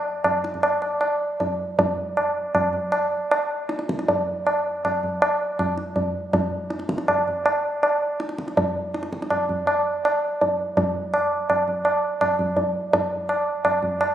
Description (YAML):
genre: indian classical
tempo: 154-169 BPM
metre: 3/4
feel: straight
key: none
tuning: none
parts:
  - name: tabla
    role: percussion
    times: 0.2-14.1 s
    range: none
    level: -21 LUFS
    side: right 1 dB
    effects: none
room: moderate scoring stage reverb, RT60 1.5 s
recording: recorded on a phone in the room, studio reverb, compression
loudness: -21 LUFS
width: side -11 dB against mid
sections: 0.0-4.1 A section; 4.1-12.9 B section; 12.9-14.1 C section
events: speeding up 0.0-14.1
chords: none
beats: 0.25 | 0.64 1.02 1.41 | 1.79 2.18 2.56 | 2.94 3.32 3.71 | 4.08 4.46 4.84 | 5.22 5.59 5.97 | 6.34 6.72 7.09 | 7.46 7.83 8.21 | 8.57 8.94 9.31 | 9.68 10.04 10.41 | 10.77 11.14 11.50 | 11.86 12.22 12.58 | 12.94 13.30 13.65 | 14.01